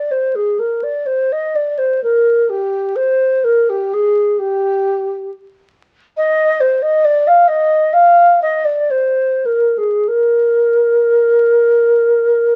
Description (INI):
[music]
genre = classical, free, expressive piece for unaccompanied alto flute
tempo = 46-71 BPM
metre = 4/4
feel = rubato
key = Bb mixolydian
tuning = A4 = 440 Hz
[part]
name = wooden-headed alto flute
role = solo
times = 0.0-12.6 s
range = G4 to F5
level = -14 LUFS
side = equal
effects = none
[sound]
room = moderate studio reverb, RT60 0.8 s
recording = very old 78 rpm record, vinyl crackle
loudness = -14 LUFS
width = mono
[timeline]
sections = 0.0-12.6 A section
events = none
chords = none